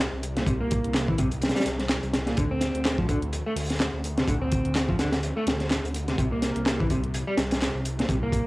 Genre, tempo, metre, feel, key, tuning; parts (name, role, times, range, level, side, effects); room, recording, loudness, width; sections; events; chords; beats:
breakbeat, breaks; 126 BPM; 4/4; swing 57% on 16ths; A4 = 439 Hz
phased detuned saw bass; bass; 0.0-8.4 s; C2 to D2; -30 LUFS; equal; phaser
crunchy breakbeat drum kit; drums; 0.2-8.5 s; hi-hat, kick drum, snare drum; -26 LUFS; equal; cassette tape
house drum kit; drums; 0.2-8.4 s; handclaps, hi-hat; -35 LUFS; equal; cassette tape
electric guitar at the edge of break-up; riff; 0.4-8.5 s; Bb2 to C4; -29 LUFS; equal; tube saturation, analog delay
light reverb; home recording on cassette; -23 LUFS; side -20 dB against mid
0.0-8.5 A section
0.0 C7(no3); 2.4 D7(no3); 6.2 C7(no3)
| 0.47 0.95 1.42 1.90 | 2.38 2.85 3.33 3.80 | 4.28 4.76 5.23 5.71 | 6.18 6.66 7.14 7.61 | 8.09